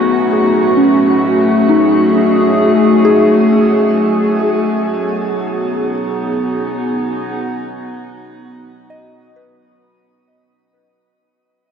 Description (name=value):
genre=ambient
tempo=66 BPM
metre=3/4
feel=straight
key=unclear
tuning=A4 = 440 Hz
part: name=warbly tape-like pad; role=sustained chords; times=0.0-10.3 s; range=A3 to G#4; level=-13 LUFS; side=left 1 dB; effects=chorus, built-in reverb
part: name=soft synth bell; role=arpeggios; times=0.0-10.9 s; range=C#4 to D#5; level=-16 LUFS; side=equal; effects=chorus, phaser, diffuse ambient delay
part: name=bowed-like drone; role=drone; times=0.0-10.4 s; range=F#3 to C#4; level=-24 LUFS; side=right 1 dB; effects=built-in reverb
room=wet shimmer reverb, RT60 6.8 s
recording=worn, warbling old tape, cassette tape, warbly pitch drift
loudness=-11 LUFS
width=side -7 dB against mid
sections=0.0-10.3 A section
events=fade-out 3.0-10.3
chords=0.0 F#madd9; 4.8 B